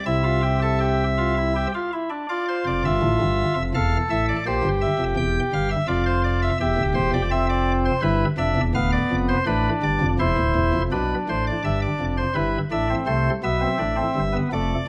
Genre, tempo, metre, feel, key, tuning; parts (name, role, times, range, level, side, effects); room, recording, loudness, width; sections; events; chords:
classical, baroque-style 3-part fugue for pipe organ; 83 BPM; 3/4; straight; F major; A4 = 442 Hz
chamber organ, cornet; solo; 0.0-14.9 s; D1 to G5; -22 LUFS; equal
moderate stone room reverb, RT60 1.1 s; -22 LUFS; mono
0.0-2.3 A section; 2.3-10.9 B section; 10.9-14.9 A section
0.1 C; 2.3 F; 3.7 Dmadd9/E; 4.5 C7; 5.9 F5; 6.6 C; 8.0 G; 8.7 G7/D; 10.2 C; 10.9 Bdim; 12.4 Em/G